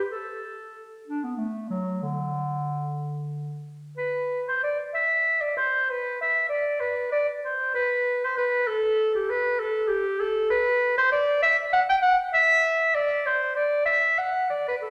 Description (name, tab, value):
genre	classical, baroque-style fantasia for unaccompanied clarinet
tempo	64 BPM (dotted quarters)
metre	12/8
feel	uneven beats, rubato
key	unclear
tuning	A4 = 439 Hz
part	mellow clarinet	solo	0.0-14.9 s	D3 to G5	-25 LUFS	equal	none
room	wet recital hall reverb, RT60 1.5 s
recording	none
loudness	-24 LUFS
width	mono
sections	0.0-4.0 A section; 4.0-14.9 B section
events	none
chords	none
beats	| 0.10 1.06 2.03 3.01 | 3.98 4.94 5.88 6.82 | 7.75 8.69 9.61 10.52 | 11.42 12.34 13.26 14.19